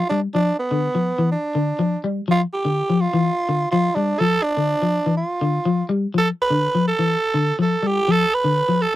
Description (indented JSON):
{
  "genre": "afrobeat",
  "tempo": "124 BPM",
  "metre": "4/4",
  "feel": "swing 53% on 16ths",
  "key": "D dorian",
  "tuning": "A4 = 443 Hz",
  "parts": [
    { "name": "growling tenor saxophone", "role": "melody", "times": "0.0-9.0 s", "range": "B3 to B4", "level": "-20 LUFS", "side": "right 2 dB", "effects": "none" },
    { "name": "electric guitar at the edge of break-up", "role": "arpeggios", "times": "0.0-8.8 s", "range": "D3 to G3", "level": "-20 LUFS", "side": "left 3 dB", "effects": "lush chorus" }
  ],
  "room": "light reverb",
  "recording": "dry, close 1970s-style studio recording",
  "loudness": "-18 LUFS",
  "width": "side -14 dB against mid",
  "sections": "0.0-9.0 A section",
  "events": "none",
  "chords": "0.0 Dm",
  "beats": "| 0.34 0.82 1.31 1.79 | 2.27 2.76 3.24 3.72 | 4.21 4.69 5.17 5.66 | 6.14 6.62 7.11 7.59 | 8.07 8.56"
}